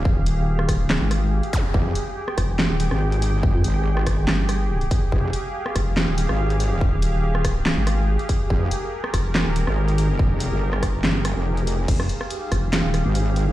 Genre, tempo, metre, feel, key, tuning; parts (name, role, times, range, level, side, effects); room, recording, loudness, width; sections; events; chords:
heavy wobble dubstep; 142 BPM; 4/4; swing 54% on 16ths, half-time; F minor; A4 = 436 Hz
supersaw pad; sustained chords; 0.0-13.5 s; G4 to G5; -29 LUFS; right 1 dB; sidechain pumping, low-pass filter
wobble bass; bass; 0.0-13.5 s; F1 to Ab1; -21 LUFS; equal; chorus, overdrive
impact and zap; sound effects; 1.5-1.6 s; -32 LUFS; equal
electronic kick drum; drums; 0.1-12.6 s; -22 LUFS; equal
vowel-sweep wobble bass; bass; 0.2-9.7, 12.5-13.0 s; Eb1 to F2; -21 LUFS; equal; chorus, overdrive
big-room dance drum kit; drums; 0.3-13.5 s; crash cymbal, handclaps, hi-hat, rim click, snare drum; -26 LUFS; equal
warbly tape-like pad; texture; 12.1-13.5 s; Ab3 to C5; -33 LUFS; right 1 dB; chorus, built-in reverb, sidechain pumping
digital ambience; played on a big sound system in a bare room, stone room reverb; -19 LUFS; side -15 dB against mid
0.0-11.9 A section; 11.9-13.5 A section
drop 0.0-11.9, 11.9-13.5; kick drops out 11.0-11.9
0.0 Fmadd9